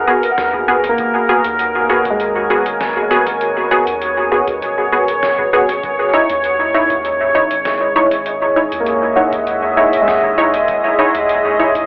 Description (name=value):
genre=ambient dub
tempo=99 BPM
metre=4/4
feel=straight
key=G# minor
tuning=A4 = 441 Hz
part: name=deep dark ambient pad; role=sustained chords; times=0.0-11.9 s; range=G#3 to G#5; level=-19 LUFS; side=equal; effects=chorus, built-in reverb, cassette tape
part: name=felt-muted upright piano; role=arpeggios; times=0.0-11.9 s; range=G#3 to F#5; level=-24 LUFS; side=equal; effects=cassette tape, analog delay
part: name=soft dub sub bass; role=bass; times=0.0-11.9 s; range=D#1 to D#2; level=-39 LUFS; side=equal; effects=tube saturation
part: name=filtered dub chord stab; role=stabs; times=0.1-11.8 s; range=B3 to C#5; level=-18 LUFS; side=equal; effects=chorus, cassette tape, dub echo
part: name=lo-fi sampler-style drum kit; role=drums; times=0.2-11.9 s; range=hi-hat, snare drum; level=-31 LUFS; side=equal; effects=cassette tape, dub echo
part: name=electronic kick drum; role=drums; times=0.5-11.9 s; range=none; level=-45 LUFS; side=equal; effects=none
room=light reverb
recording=home recording on cassette, telephone sound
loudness=-15 LUFS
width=mono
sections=0.0-11.9 A section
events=none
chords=0.0 G#m7; 5.8 C#madd9/G#